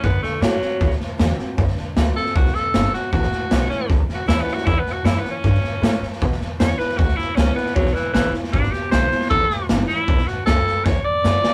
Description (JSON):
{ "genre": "rockabilly", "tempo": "155 BPM", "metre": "4/4", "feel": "straight", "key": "A mixolydian", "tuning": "A4 = 440 Hz", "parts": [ { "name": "raspy tenor saxophone", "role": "melody", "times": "0.0-11.5 s", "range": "E3 to D5", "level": "-24 LUFS", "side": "equal", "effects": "none" }, { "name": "picked steel-string acoustic guitar", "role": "accompaniment", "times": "0.0-11.5 s", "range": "E2 to F#4", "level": "-32 LUFS", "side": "equal", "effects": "none" }, { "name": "upright bass", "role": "bass", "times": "0.0-11.5 s", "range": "G1 to B2", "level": "-23 LUFS", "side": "equal", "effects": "none" }, { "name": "raw garage drum kit", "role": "drums", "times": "0.0-11.5 s", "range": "hi-hat, kick drum, snare drum", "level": "-24 LUFS", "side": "equal", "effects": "none" } ], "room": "moderate booth ambience, RT60 0.3 s", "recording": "rough rehearsal-room recording, warm saturation", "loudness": "-20 LUFS", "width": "mono", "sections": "0.0-11.5 A section", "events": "tenor saxophone solo 0.0-11.5; drum fill 10.9-11.5", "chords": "0.0 D7; 3.1 A7; 6.2 E7; 9.3 A7; 10.9 E7", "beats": "| 0.03 0.42 0.80 1.19 | 1.58 1.96 2.35 2.74 | 3.12 3.51 3.90 4.28 | 4.67 5.05 5.44 5.83 | 6.21 6.60 6.99 7.37 | 7.76 8.14 8.53 8.92 | 9.30 9.69 10.08 10.46 | 10.85 11.24" }